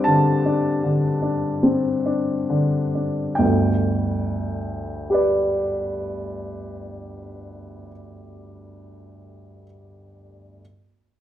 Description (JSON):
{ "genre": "classical, romantic nocturne for solo piano", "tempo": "32-39 BPM", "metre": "3/4", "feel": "rubato", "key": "G major", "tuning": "A4 = 439 Hz", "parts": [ { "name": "warm upright piano", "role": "solo", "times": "0.0-10.6 s", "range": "G1 to A5", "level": "-20 LUFS", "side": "equal", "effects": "none" } ], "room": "light reverb", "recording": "dark, warm production", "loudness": "-19 LUFS", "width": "side -11 dB against mid", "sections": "0.0-3.4 A section; 3.4-8.5 B section", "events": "slowing down 0.0-3.4", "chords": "0.0 D5/G; 3.4 G" }